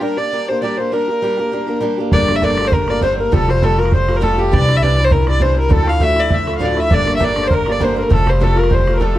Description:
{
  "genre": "celtic folk, Celtic reel",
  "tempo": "201 BPM",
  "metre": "4/4",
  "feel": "swing 54% on 8ths",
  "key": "G dorian",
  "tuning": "A4 = 441 Hz",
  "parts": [
    { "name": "warm fiddle", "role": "melody", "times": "0.0-9.2 s", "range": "G4 to F5", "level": "-18 LUFS", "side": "left 1 dB", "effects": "none" },
    { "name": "accordion", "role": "second line", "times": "0.0-9.2 s", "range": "G4 to G5", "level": "-24 LUFS", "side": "left 1 dB", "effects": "none" },
    { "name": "picked swing-style acoustic guitar", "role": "accompaniment", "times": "0.0-9.2 s", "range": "D2 to G4", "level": "-20 LUFS", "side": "equal", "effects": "none" },
    { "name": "upright bass", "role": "bass", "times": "2.1-9.2 s", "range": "F1 to D2", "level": "-18 LUFS", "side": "equal", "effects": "none" },
    { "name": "bodhran", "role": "percussion", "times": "2.1-9.1 s", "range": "none", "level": "-19 LUFS", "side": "right 1 dB", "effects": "none" }
  ],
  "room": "light reverb",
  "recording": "dark, warm production",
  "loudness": "-13 LUFS",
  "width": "side -14 dB against mid",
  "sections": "0.0-2.1 A section; 2.1-9.2 B section",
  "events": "none",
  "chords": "0.0 Gm; 2.1 Gmadd9; 3.3 Fadd9; 4.5 Cadd9; 5.7 Dmadd9; 6.9 Gmadd9; 8.1 Fadd9",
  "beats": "0.01 0.32 0.62 | 0.92 1.22 1.52 1.83 | 2.13 2.43 2.73 3.03 | 3.33 3.63 3.93 4.23 | 4.53 4.82 5.12 5.42 | 5.72 6.02 6.32 6.62 | 6.91 7.21 7.51 7.81 | 8.11 8.41 8.71 9.01"
}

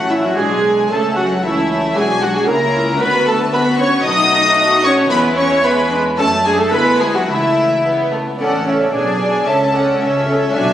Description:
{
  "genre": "quick classical-period movement for string orchestra",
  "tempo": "113 BPM",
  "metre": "2/4",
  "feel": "rubato",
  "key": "A major",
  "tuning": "A4 = 441 Hz",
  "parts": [
    { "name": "warm symphonic violin section", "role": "melody", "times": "0.0-10.7 s", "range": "E5 to D#6", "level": "-19 LUFS", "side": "left 2 dB", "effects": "none" },
    { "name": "warm symphonic violin section", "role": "second line", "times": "0.0-10.7 s", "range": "G#3 to E5", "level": "-20 LUFS", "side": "left 2 dB", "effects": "none" },
    { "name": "rich symphonic double bass section", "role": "bass", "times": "0.0-10.7 s", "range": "A1 to F#2", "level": "-24 LUFS", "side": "right 1 dB", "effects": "none" },
    { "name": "warm studio viola section", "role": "accompaniment", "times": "0.1-10.7 s", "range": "C#4 to D#5", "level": "-16 LUFS", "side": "right 1 dB", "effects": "none" },
    { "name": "warm studio cello section", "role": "bass", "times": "0.1-10.7 s", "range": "A2 to D#4", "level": "-22 LUFS", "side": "equal", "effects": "none" }
  ],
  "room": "wet scoring stage reverb, RT60 1.8 s",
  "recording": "recorded on a phone in the room, studio reverb, compression",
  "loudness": "-12 LUFS",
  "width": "side -11 dB against mid",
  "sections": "0.0-8.4 A section; 8.4-10.7 A section",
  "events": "none",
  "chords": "0.4 G#dim/B; 0.9 A/C#; 2.0 Bm; 2.5 A#dim/C#; 3.0 Bm/D; 4.1 B7; 5.1 E; 6.2 F#m; 6.7 E7/D; 7.3 A/C#; 8.4 A; 8.9 G#dim/B; 9.5 A/C#",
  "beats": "0.37 | 0.90 1.43 | 1.96 2.48 | 3.00 3.53 | 4.05 4.58 | 5.11 5.64 | 6.18 6.73 | 7.28 7.84 | 8.40 8.93 | 9.47 10.01 | 10.55"
}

